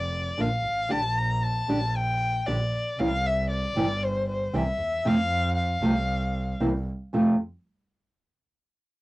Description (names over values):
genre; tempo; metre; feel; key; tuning
tango; 116 BPM; 4/4; rubato; F major; A4 = 440 Hz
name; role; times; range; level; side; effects
dark violin; second line; 0.0-6.6 s; C5 to Bb5; -28 LUFS; left 2 dB; cassette tape
clear double bass; bass; 0.0-7.3 s; F1 to F2; -29 LUFS; right 1 dB; none
nylon-string guitar; accompaniment; 0.4-7.3 s; F2 to G4; -24 LUFS; right 1 dB; cassette tape
room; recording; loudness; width
moderate booth ambience, RT60 0.2 s; home recording on cassette; -24 LUFS; side -19 dB against mid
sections
0.0-7.1 A section; 7.1-9.0 B section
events
violin solo 0.0-7.1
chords
0.0 Bb; 0.9 Gm/Bb; 3.0 C; 5.0 F5; 6.6 C7; 7.1 F5